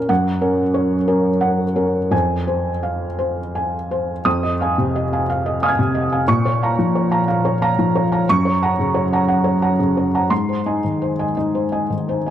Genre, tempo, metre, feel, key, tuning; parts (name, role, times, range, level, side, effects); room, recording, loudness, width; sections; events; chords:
neoclassical minimalist piano; 56-61 BPM (dotted quarters); 6/8; rubato; F phrygian; A4 = 440 Hz
felt-muted upright piano; solo; 0.0-12.3 s; F2 to Ab6; -16 LUFS; equal; analog delay
moderate spring reverb, RT60 1.5 s; dark, warm production; -16 LUFS; side -10 dB against mid
0.0-4.3 A section; 4.3-12.3 B section
0.1 Gb; 2.1 Fm; 4.3 Fm7; 6.3 Bbm; 8.3 Gb; 10.3 Ab